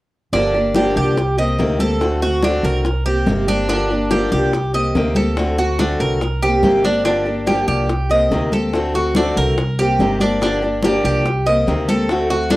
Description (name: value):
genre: latin, Cuban son and guajira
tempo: 143 BPM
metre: 4/4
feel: straight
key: G minor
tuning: A4 = 440 Hz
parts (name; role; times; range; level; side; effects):
- picked old ladder-braced acoustic guitar; accompaniment; 0.3-12.6 s; C3 to G4; -20 LUFS; left 1 dB; cassette tape
- Cuban tres; arpeggios; 0.3-12.6 s; D4 to Eb5; -19 LUFS; right 1 dB; cassette tape
- upright bass; bass; 0.3-12.6 s; G1 to D2; -22 LUFS; equal; none
- bongos; percussion; 0.3-12.6 s; none; -24 LUFS; left 3 dB; none
- congas; percussion; 0.3-12.6 s; none; -23 LUFS; left 1 dB; none
room: moderate small room ambience, RT60 0.5 s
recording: home recording on cassette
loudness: -15 LUFS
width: side -18 dB against mid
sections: 0.3-12.6 A section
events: none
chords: 0.3 Gm7; 1.2 Cm7; 2.0 D7; 2.8 Cm7; 3.7 Gm7; 4.5 Cm7; 5.4 D7; 6.2 Cm7; 7.1 Gm7; 7.9 Cm7; 8.7 D7; 9.6 Cm7; 10.4 Gm7; 11.3 Cm7